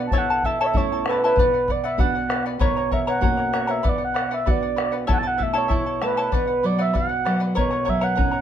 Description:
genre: andean folk, Andean ensemble.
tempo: 97 BPM.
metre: 2/4.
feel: straight.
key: unclear.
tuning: A4 = 440 Hz.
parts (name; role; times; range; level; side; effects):
charango; accompaniment; 0.0-8.4 s; E4 to A#5; -26 LUFS; left 2 dB; none.
nylon-string guitar; accompaniment; 0.0-8.4 s; B2 to F#4; -27 LUFS; right 3 dB; none.
reedy FM lead; melody; 0.1-8.4 s; B4 to A5; -23 LUFS; right 2 dB; chorus.
bombo; percussion; 0.1-8.3 s; none; -25 LUFS; left 2 dB; none.
room: light reverb.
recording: minimal, uncompressed stereo recording.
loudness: -19 LUFS.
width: side -9 dB against mid.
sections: 0.0-5.1 A section; 5.1-8.4 A section.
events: none.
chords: 0.1 A/B; 1.4 Bm; 2.6 F#/B; 3.9 Bm; 5.1 A/B; 6.3 Bm; 7.6 F#/B.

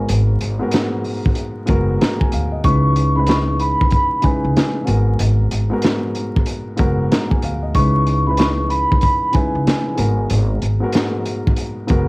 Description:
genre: hip hop, boom-bap hip-hop.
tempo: 94 BPM.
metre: 4/4.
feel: swing 62% on 16ths.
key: unclear.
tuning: A4 = 441 Hz.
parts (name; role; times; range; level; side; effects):
vibraphone with soft mallets; melody; 0.0-10.3 s; G#5 to C#6; -20 LUFS; equal; high-pass filter, low-pass filter.
dark concert grand piano; accompaniment; 0.0-12.1 s; G#2 to A#5; -21 LUFS; left 1 dB; cassette tape, high-pass filter, low-pass filter.
upright bass; bass; 0.0-12.1 s; F#1 to D2; -18 LUFS; equal; tube saturation.
crunchy breakbeat drum kit; drums; 0.1-12.1 s; hi-hat, kick drum, snare drum; -18 LUFS; equal; none.
room: little or no reverb.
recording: home recording on cassette, vinyl crackle, faint mains hum.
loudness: -15 LUFS.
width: side -24 dB against mid.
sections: 0.0-12.1 A section.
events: none.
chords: 0.0 G#m9; 2.6 C#m9; 4.9 G#m9; 7.8 C#m9; 10.0 G#m9.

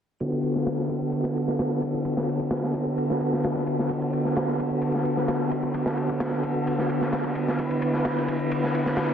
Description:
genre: breakbeat, breaks.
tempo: 130 BPM.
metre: 4/4.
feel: straight.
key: B minor.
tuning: A4 = 440 Hz.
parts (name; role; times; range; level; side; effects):
mellow tonewheel organ; sustained chords; 0.2-9.1 s; D3 to B4; -24 LUFS; equal; chorus vibrato, slow rotary speaker, sidechain pumping.
crunchy breakbeat drum kit; drums; 0.2-9.1 s; kick drum, ride cymbal, snare drum; -29 LUFS; equal; high-pass filter on kick, high-pass filter on cymbals, high-pass filter on snare, high-pass filter on room.
electronic hi-hat; drums; 0.2-9.1 s; none; -62 LUFS; right 11 dB; none.
room: moderate digital room reverb, RT60 1.1 s, small room ambience.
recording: dense, heavily limited modern master, low-pass filter.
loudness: -23 LUFS.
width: side -8 dB against mid.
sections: 0.2-9.1 A section.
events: filter sweep 0.2-9.1.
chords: 0.2 Bm7.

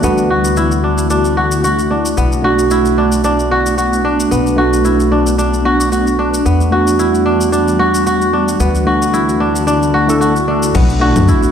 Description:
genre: organic downtempo.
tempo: 112 BPM.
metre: 4/4.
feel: swing 55% on 16ths.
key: B minor.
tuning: A4 = 441 Hz.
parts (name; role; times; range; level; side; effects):
tine electric piano; accompaniment; 0.0-11.5 s; A3 to A4; -17 LUFS; right 3 dB; medium stereo tremolo, sidechain pumping, tape echo.
ethereal airy pad; sustained chords; 0.0-11.5 s; D3 to F#4; -18 LUFS; left 1 dB; ensemble chorus, built-in reverb, sidechain pumping.
kora; arpeggios; 0.0-11.5 s; B3 to F#4; -16 LUFS; left 1 dB; low-pass filter, tape echo.
upright bass; bass; 0.0-11.3 s; F#1 to E2; -18 LUFS; left 1 dB; sidechain pumping.
electronic shaker, crash cymbal and congas; drums; 0.0-11.5 s; none; -24 LUFS; left 3 dB; studio reverb.
electronic kick drum; drums; 10.7-11.4 s; none; -15 LUFS; left 1 dB; studio reverb.
room: moderate lush hall reverb, RT60 2.4 s.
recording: played on a big sound system in a bare room, stone room reverb.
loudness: -11 LUFS.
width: side -8 dB against mid.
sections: 0.0-10.7 A section.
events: filter sweep on ambient pad 0.0-10.7.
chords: 0.0 D6; 2.2 Bm7; 6.5 Em9; 8.6 D6; 10.7 Bm7.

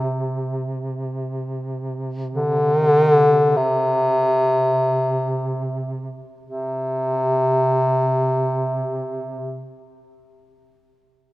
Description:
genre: caucasian folk, Caucasian lament.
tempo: free time.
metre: none.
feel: none.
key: unclear.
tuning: A4 = 440 Hz.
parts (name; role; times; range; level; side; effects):
bright bass clarinet; melody; 0.0-9.7 s; C3 to D3; -18 LUFS; equal; none.
warm duduk; drone; 0.0-9.7 s; C3; -28 LUFS; right 1 dB; none.
room: light reverb, small room ambience.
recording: rough home demo mix.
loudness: -18 LUFS.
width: side -18 dB against mid.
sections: 0.0-6.4 A section; 6.4-10.3 B section.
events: slowing down 0.0-6.4.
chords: none.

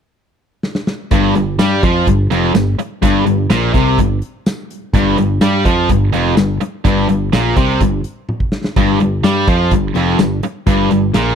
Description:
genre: classic rock.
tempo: 125 BPM.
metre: 4/4.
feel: straight.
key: unclear.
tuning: A4 = 440 Hz.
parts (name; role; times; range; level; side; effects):
big rock drum kit; drums; 0.6-11.3 s; hi-hat, kick drum, snare drum, tambourine, toms; -17 LUFS; right 1 dB; none.
distorted electric guitar; riff; 1.1-11.3 s; F2 to G3; -16 LUFS; left 11 dB; distortion.
tight distorted guitar; riff; 1.1-11.3 s; F2 to G3; -17 LUFS; right 11 dB; distortion.
picked electric bass; bass; 1.1-11.3 s; F1 to G2; -18 LUFS; right 1 dB; none.
room: studio reverb.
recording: dry, close 1970s-style studio recording.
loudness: -12 LUFS.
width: side -8 dB against mid.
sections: 0.0-1.1 A section; 1.1-11.3 B section.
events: drum fill 0.6-1.1, 8.3-8.8.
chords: 0.0 N.C.; 1.1 G5.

